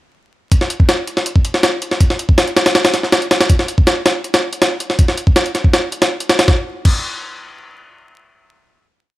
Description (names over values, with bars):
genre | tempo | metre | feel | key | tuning
drum and bass | 161 BPM | 4/4 | straight | none | none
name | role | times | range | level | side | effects
jungle sampler-style drum kit | drums | 0.5-6.9 s | crash cymbal, hi-hat, kick drum, snare drum | -12 LUFS | equal | none
room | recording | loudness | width
little or no reverb | vinyl crackle | -12 LUFS | side -17 dB against mid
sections
0.5-6.5 drop; 6.5-8.0 final hit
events
drop 0.5-6.5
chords
none